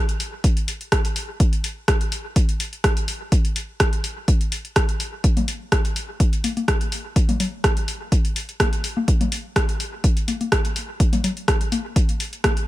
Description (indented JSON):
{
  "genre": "techno",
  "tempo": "125 BPM",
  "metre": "4/4",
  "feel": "swing 53% on 16ths",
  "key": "none",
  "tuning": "none",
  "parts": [
    { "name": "deep house drum kit", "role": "drums", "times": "0.1-12.7 s", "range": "hi-hat, rim click", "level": "-25 LUFS", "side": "equal", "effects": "none" },
    { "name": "electronic kick drum", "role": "drums", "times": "0.4-12.5 s", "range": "none", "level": "-20 LUFS", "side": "equal", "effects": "none" },
    { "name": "congas", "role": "percussion", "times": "5.4-12.5 s", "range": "none", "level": "-27 LUFS", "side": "left 4 dB", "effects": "overdrive, sidechain pumping on perc, dub echo" }
  ],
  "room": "little or no reverb",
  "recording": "none",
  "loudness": "-19 LUFS",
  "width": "side -16 dB against mid",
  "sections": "0.0-12.7 A section",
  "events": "none",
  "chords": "none"
}